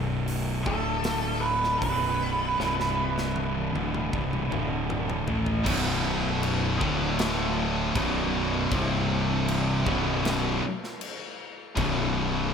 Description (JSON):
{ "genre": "stoner and doom metal", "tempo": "78 BPM", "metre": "4/4", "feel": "straight", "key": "B minor", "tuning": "A4 = 443 Hz", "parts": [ { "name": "fuzz guitar", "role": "riff", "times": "0.0-12.5 s", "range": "B1 to A3", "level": "-31 LUFS", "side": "right 8 dB", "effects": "distortion" }, { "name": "thick fuzz guitar", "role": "riff", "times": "0.0-12.5 s", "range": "B1 to A3", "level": "-30 LUFS", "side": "left 9 dB", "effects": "distortion" }, { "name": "fuzz fingered electric bass", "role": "bass", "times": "0.0-12.5 s", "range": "B0 to A1", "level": "-32 LUFS", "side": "equal", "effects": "overdrive" }, { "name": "big rock drum kit", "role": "drums", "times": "0.3-11.9 s", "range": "crash cymbal, hi-hat, kick drum, snare drum, toms", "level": "-33 LUFS", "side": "equal", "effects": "none" }, { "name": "octave-fuzz lead guitar", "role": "melody", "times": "0.7-4.8 s", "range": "A4 to B4", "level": "-29 LUFS", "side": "right 2 dB", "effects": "wah, distortion, tape echo" }, { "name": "heavy high-gain guitar", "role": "riff", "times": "5.6-12.5 s", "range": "B1 to D3", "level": "-29 LUFS", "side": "equal", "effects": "distortion" } ], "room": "light reverb", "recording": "none", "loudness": "-24 LUFS", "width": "side -6 dB against mid", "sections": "0.0-5.7 A section; 5.7-12.5 B section", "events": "drum fill 2.6-5.7", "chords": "0.0 B5; 0.7 D5; 1.8 B5; 2.6 C5; 3.7 Bm; 4.5 D5; 5.3 A5; 5.7 B5; 6.8 D5; 8.0 B5; 8.7 C5; 9.9 B5" }